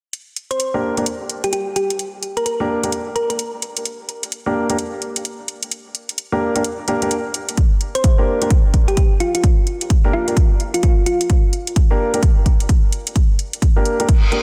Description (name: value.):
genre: bass house.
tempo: 129 BPM.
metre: 4/4.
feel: swing 62% on 16ths.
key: G minor.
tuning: A4 = 440 Hz.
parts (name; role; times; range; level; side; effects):
electronic hi-hat; drums; 0.1-14.4 s; none; -27 LUFS; equal; none.
thumb-piano-like synth pluck; melody; 0.5-3.4, 8.0-11.7 s; F4 to C5; -25 LUFS; equal; chorus, cassette tape, delay.
dark grand piano; stabs; 0.7-14.4 s; Bb3 to Bb4; -24 LUFS; equal; sidechain pumping, low-pass filter, delay.
electronic kick drum; drums; 7.6-14.2 s; none; -16 LUFS; equal; none.
reverse cymbal; sound effects; 14.2-14.4 s; none; -25 LUFS; equal; none.
room: light reverb.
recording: dense, heavily limited modern master.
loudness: -18 LUFS.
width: mono.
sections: 0.1-14.4 A section.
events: reverse cymbal 14.2.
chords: 0.1 Gm.